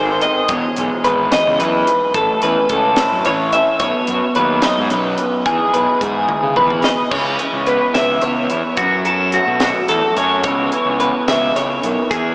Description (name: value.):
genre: math rock and midwest emo.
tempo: 72 BPM (dotted quarters).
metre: 6/8.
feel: straight.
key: unclear.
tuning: A4 = 439 Hz.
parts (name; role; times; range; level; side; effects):
electric guitar through a small old amp; accompaniment; 0.0-12.3 s; E2 to G#4; -20 LUFS; right 1 dB; wide subtle chorus.
twelve-string electric guitar; arpeggios; 0.0-12.3 s; F#4 to E5; -16 LUFS; equal; lush chorus.
fuzz fingered electric bass; bass; 0.0-12.3 s; E1 to C#3; -22 LUFS; equal; overdrive.
crisp fusion drum kit; drums; 0.2-12.2 s; crash cymbal, hi-hat, kick drum, snare drum, toms; -24 LUFS; equal; none.
room: wet huge ambient reverb, RT60 6.4 s.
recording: dreamy mix soaked in reverb, small speaker sound.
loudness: -13 LUFS.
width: side -26 dB against mid.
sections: 0.0-7.1 A section; 7.1-12.3 B section.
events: drum fill 6.3-7.1.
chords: 0.5 Emaj7; 2.1 A; 3.8 B; 5.5 Emaj7; 7.1 C#m7; 8.8 F#m7; 10.4 C#m7.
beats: | 0.49 1.32 | 2.15 2.98 | 3.81 4.63 | 5.46 6.29 | 7.12 7.96 | 8.79 9.62 | 10.45 11.28 | 12.11.